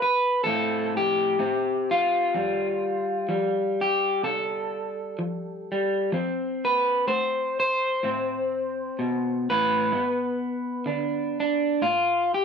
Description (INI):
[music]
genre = folk, solo fingerstyle acoustic guitar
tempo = 63 BPM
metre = 4/4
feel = swing 56% on 8ths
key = unclear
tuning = A4 = 439 Hz
[part]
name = electric guitar through a small old amp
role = solo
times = 0.0-12.4 s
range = E2 to C5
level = -23 LUFS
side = equal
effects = none
[sound]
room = light reverb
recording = none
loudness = -23 LUFS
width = side -6 dB against mid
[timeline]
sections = 0.0-12.4 A section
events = none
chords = 0.4 Am/E; 2.3 Fadd9; 8.0 Am; 9.9 G; 11.8 G7sus2/A